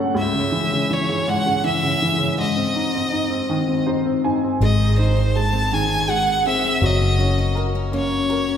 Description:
six-eight pop ballad; 54 BPM (dotted quarters); 6/8; straight; A4 = 441 Hz
clear upright piano; accompaniment; 0.0-8.6 s; C#2 to G#5; -21 LUFS; left 1 dB
clear violin; melody; 0.2-8.6 s; B#4 to A5; -22 LUFS; right 1 dB
picked steel-string acoustic guitar; arpeggios; 4.6-8.6 s; D#3 to G#4; -28 LUFS; left 6 dB
vintage muted fingered electric bass; bass; 4.6-8.6 s; F#1 to G#1; -20 LUFS; equal
wet scoring stage reverb, RT60 1.9 s; recorded in a church or concert hall; -17 LUFS; side -8 dB against mid
0.0-4.6 A section; 4.6-8.6 B section
upright piano fill 0.0, 3.5-4.6
0.2 C#m; 2.4 G#; 6.8 F#
| 0.18 1.29 | 2.40 3.50 | 4.61 5.71 | 6.82 7.92

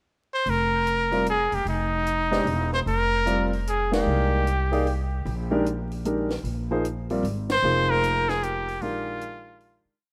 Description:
modal jazz; 151 BPM; 3/4; swing 64% on 8ths; F dorian; A4 = 440 Hz
bright trumpet; melody; 0.3-5.1, 7.5-9.9 s; Eb4 to C5; -27 LUFS; equal; tape echo
upright bass; bass; 0.5-9.9 s; E1 to C2; -30 LUFS; equal
compact cocktail drum kit; drums; 0.5-9.7 s; hi-hat, ride cymbal, snare drum; -39 LUFS; equal
warm concert grand piano; accompaniment; 1.1-9.9 s; Eb3 to F5; -30 LUFS; equal
light reverb, small room ambience; rough home demo mix, vinyl crackle; -25 LUFS; mono
0.0-0.5 pickup bar; 0.5-10.0 A section
band accent 3.9, 7.4; fade-out 8.1-10.0
0.5 F9sus4; 5.3 Bb9sus4
0.06 | 0.46 0.86 1.26 | 1.66 2.06 2.46 | 2.86 3.26 3.66 | 4.06 4.46 4.86 | 5.26 5.66 6.05 | 6.45 6.84 7.24 | 7.63 8.03 8.42 | 8.81 9.21 9.60

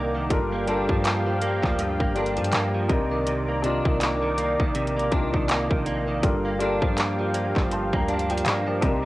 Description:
contemporary R&B; 81 BPM; 4/4; swing 58% on 16ths; G minor; A4 = 441 Hz
warm baby grand piano; accompaniment; 0.0-9.1 s; C3 to C6; -29 LUFS; left 2 dB; cassette tape
warm analog pad; sustained chords; 0.0-9.1 s; G4 to D6; -29 LUFS; left 1 dB; chorus, cassette tape
direct-recorded clean electric guitar; arpeggios; 0.0-9.1 s; G2 to D4; -27 LUFS; right 2 dB; ensemble chorus, cassette tape, analog delay
long sustained 808-style bass; bass; 0.0-9.1 s; G1 to G2; -31 LUFS; equal
trap drum kit; drums; 0.3-9.0 s; handclaps, hi-hat, kick drum; -25 LUFS; equal; cassette tape
light reverb, digital ambience; home recording on cassette; -21 LUFS; side -18 dB against mid
0.0-9.1 A section
0.3 Gm7; 2.9 Cm9; 6.2 Gm7
| 0.30 1.04 1.78 2.52 | 3.27 4.01 4.75 5.49 | 6.23 6.97 7.71 8.45

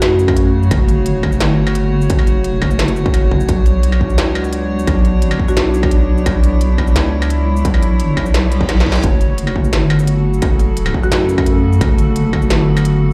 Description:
half-time drum and bass; 173 BPM; 4/4; half-time; F# phrygian; A4 = 440 Hz
marimba with medium mallets; melody; 0.0-0.3, 5.5-5.8, 11.0-11.4 s; F#4; -24 LUFS; equal; digital delay
warm chamber cello section; sustained chords; 0.0-13.1 s; C#3 to F#4; -23 LUFS; equal; sidechain pumping
deep soft wobble bass; bass; 0.0-13.1 s; F#1 to F#2; -18 LUFS; equal; chorus
industrial drum kit; drums; 0.0-12.9 s; hi-hat, shaker, snare drum, struck metal; -24 LUFS; equal
metallic inharmonic drone; texture; 0.0-13.1 s; A4 to C#5; -31 LUFS; equal; chorus, built-in reverb
electronic kick drum; drums; 0.3-12.4 s; -19 LUFS; equal; distortion
reverse cymbal; sound effects; 8.5-9.0 s; -32 LUFS; equal
digital ambience; played on a big sound system in a bare room, large studio reverb; -14 LUFS; mono
0.0-13.1 A section
reverse cymbal 8.5-9.0; drum fill 8.7-9.0
0.0 F#m; 3.5 Bm; 9.0 F#m
0.02 0.37 | 0.71 1.06 1.41 1.75 | 2.10 2.45 2.79 3.14 | 3.49 3.83 4.18 4.53 | 4.87 5.22 5.57 5.92 | 6.26 6.61 6.96 7.30 | 7.65 8.00 8.34 8.69 | 9.04 9.38 9.73 10.08 | 10.42 10.77 11.12 11.46 | 11.81 12.16 12.51 12.85

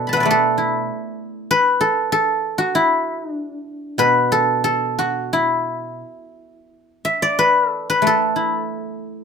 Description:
chinese traditional, Chinese solo plucked strings; 84-98 BPM; 4/4; rubato; E shang mode; A4 = 440 Hz
guzheng; solo; 0.0-9.2 s; B2 to D6; -17 LUFS; left 1 dB
light reverb; minimal, uncompressed stereo recording; -16 LUFS; side -6 dB against mid
0.0-6.7 A section; 6.7-9.2 B section
0.27 0.89 | 1.51 2.13 2.75 3.38 | 4.01 4.66 5.33 6.03 | 6.72 7.39 8.05 8.68

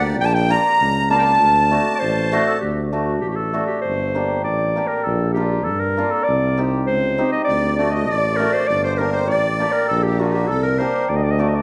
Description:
klezmer; 99 BPM; 2/4; straight; D phrygian dominant; A4 = 440 Hz
warm clarinet; melody; 0.0-11.6 s; F#4 to Bb5; -22 LUFS; equal
musette accordion; second line; 0.0-2.6, 7.5-11.1 s; Eb4 to Bb5; -28 LUFS; equal
hammered dulcimer; accompaniment; 0.0-11.5 s; A3 to G4; -26 LUFS; equal
warm tuba; bass; 0.0-11.6 s; G1 to G2; -24 LUFS; equal
wet large studio reverb, RT60 1.3 s; band playing live in one room; -19 LUFS; mono
0.0-2.6 A section; 2.6-11.6 B section
clarinet solo 0.0-2.6
0.2 Bb; 1.4 D; 3.9 Gm; 5.1 Bb; 6.3 Cm; 7.5 D; 8.7 Gm; 9.9 Bb; 11.1 D
| 0.20 0.81 | 1.42 2.03 | 2.63 3.24 | 3.85 4.46 | 5.07 5.68 | 6.28 6.89 | 7.49 8.10 | 8.70 9.30 | 9.90 10.50 | 11.10

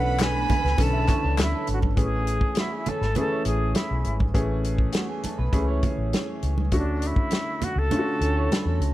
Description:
lush 1970s-style soul; 101 BPM; 4/4; straight; A major; A4 = 440 Hz
concert flute; melody; 0.0-8.8 s; D4 to A5; -28 LUFS; right 1 dB
warm studio violin section; second line; 0.0-1.6 s; B4 to B5; -34 LUFS; right 1 dB
warm concert grand piano; accompaniment; 0.0-8.9 s; D3 to A4; -29 LUFS; left 1 dB
soft string machine; sustained chords; 0.0-2.0 s; D3 to B3; -37 LUFS; equal
vintage muted fingered electric bass; bass; 0.0-8.9 s; G#1 to E2; -25 LUFS; equal
warm soul drum kit; drums; 0.2-8.9 s; hi-hat, kick drum, snare drum; -25 LUFS; equal
congas; percussion; 0.2-8.6 s; -34 LUFS; right 5 dB
group handclap; percussion; 0.2-1.5 s; -36 LUFS; left 10 dB
electric guitar through a small old amp; riff; 0.9-8.9 s; A3 to E5; -34 LUFS; right 7 dB; lush chorus
small room reverb; -22 LUFS; side -15 dB against mid
0.0-2.0 A section; 2.0-8.9 B section
0.0 Bm11; 2.0 Amaj7; 6.7 Dmaj7
0.20 0.79 1.38 | 1.97 2.57 3.16 3.75 | 4.35 4.94 5.54 6.13 | 6.72 7.32 7.91 8.51

